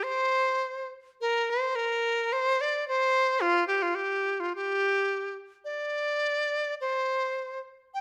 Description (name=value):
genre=chinese traditional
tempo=106 BPM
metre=2/4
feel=rubato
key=G yu mode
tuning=A4 = 441 Hz
part: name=bright reedy large dizi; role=solo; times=0.0-8.0 s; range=F4 to G5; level=-28 LUFS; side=equal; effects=none
room=moderate recital hall reverb, RT60 1.4 s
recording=none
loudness=-28 LUFS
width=mono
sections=0.0-5.7 A section; 5.7-8.0 B section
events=none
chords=none